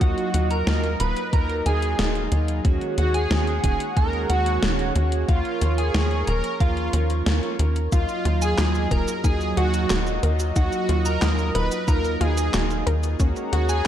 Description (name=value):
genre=synthwave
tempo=91 BPM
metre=4/4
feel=straight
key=Eb minor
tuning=A4 = 438 Hz
part: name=soft supersaw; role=melody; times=0.0-13.9 s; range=F4 to Cb5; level=-28 LUFS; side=right 1 dB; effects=ping-pong delay
part: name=soft synth bell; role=second line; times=0.0-13.9 s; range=F5 to Cb6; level=-33 LUFS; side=right 1 dB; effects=chorus, phaser, tape echo
part: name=chorused pulse-width pad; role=sustained chords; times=0.0-13.9 s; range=Gb3 to Db6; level=-31 LUFS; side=right 2 dB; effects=sidechain pumping
part: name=chorused polysynth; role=stabs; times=0.0-13.7 s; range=Eb3 to Bb4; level=-30 LUFS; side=right 2 dB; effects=tape echo
part: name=tight sequencer bass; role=bass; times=0.0-13.8 s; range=Eb1 to Eb2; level=-23 LUFS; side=equal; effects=sidechain pumping
part: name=electronic kick drum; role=drums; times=0.0-13.3 s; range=none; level=-21 LUFS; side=equal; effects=none
part: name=gated 80s digital drum machine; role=drums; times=0.0-13.8 s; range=cabasa, handclaps, hi-hat, snare drum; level=-28 LUFS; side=left 1 dB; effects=gated reverb, gated reverb snare
part: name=wide unison pluck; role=arpeggios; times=7.9-13.7 s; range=Db4 to Bb4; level=-33 LUFS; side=left 4 dB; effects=tape echo
room=light reverb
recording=dark, warm production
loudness=-20 LUFS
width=side -10 dB against mid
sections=0.0-13.9 A section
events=none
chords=0.0 Ebmadd9; 2.6 Gbadd9/Eb; 5.3 Bbm/Eb; 7.9 Ebmadd9; 13.2 Gbadd9/Eb